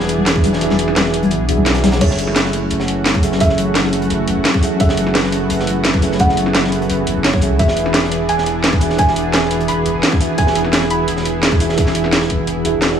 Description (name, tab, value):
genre	liquid drum and bass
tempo	172 BPM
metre	4/4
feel	straight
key	F# minor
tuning	A4 = 440 Hz
part	soft round pluck	melody	0.0-11.9 s	C#5 to B5	-22 LUFS	right 2 dB	chorus, digital delay
part	mellow tine electric piano	accompaniment	0.0-13.0 s	E3 to E5	-19 LUFS	equal	medium stereo tremolo, digital delay
part	lush unison pad	sustained chords	0.0-13.0 s	E3 to G#4	-22 LUFS	right 2 dB	chorus
part	warm sub bass	bass	0.0-13.0 s	E1 to C#2	-24 LUFS	equal	none
part	crunchy breakbeat drum kit	drums	0.0-13.0 s	hi-hat, snare drum	-24 LUFS	equal	high-pass filter on hats, high-pass filter on snare, high-pass filter on room
part	drum and bass drum kit	drums	0.1-13.0 s	crash cymbal, hi-hat, snare drum	-19 LUFS	equal	none
part	congas	percussion	0.2-1.9 s	none	-20 LUFS	left 4 dB	none
part	electronic kick drum	drums	0.4-12.4 s	none	-15 LUFS	equal	none
room	light reverb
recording	none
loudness	-13 LUFS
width	side -8 dB against mid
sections	0.0-2.0 A section; 2.0-13.0 A section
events	drop 0.0-2.0, 2.0-13.0; kick drops out 0.6-2.0, 12.8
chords	0.0 E7; 2.0 F#m7; 7.6 E7